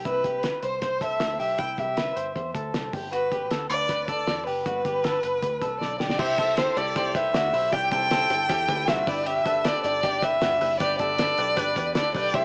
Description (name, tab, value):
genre	jangly indie pop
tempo	156 BPM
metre	4/4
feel	straight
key	G major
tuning	A4 = 440 Hz
part	electric guitar through a small old amp	arpeggios	0.0-12.4 s	E4 to C5	-31 LUFS	equal	spring reverb, cassette tape
part	vintage muted picked electric bass	bass	0.0-12.4 s	F#1 to E2	-38 LUFS	equal	none
part	warm violin	melody	0.1-12.4 s	B4 to G5	-24 LUFS	equal	cassette tape
part	cloth-damped thuddy drum kit	drums	0.1-12.4 s	crash cymbal, hi-hat, kick drum, snare drum	-30 LUFS	equal	cassette tape
part	bright upright piano	accompaniment	6.2-12.4 s	D4 to D5	-31 LUFS	equal	cassette tape
room	moderate studio reverb, RT60 0.6 s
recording	home recording on cassette, small speaker sound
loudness	-22 LUFS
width	side -35 dB against mid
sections	0.0-6.2 A section; 6.2-12.4 B section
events	drum fill 5.8-6.2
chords	0.1 C; 2.9 G; 6.2 C; 9.1 G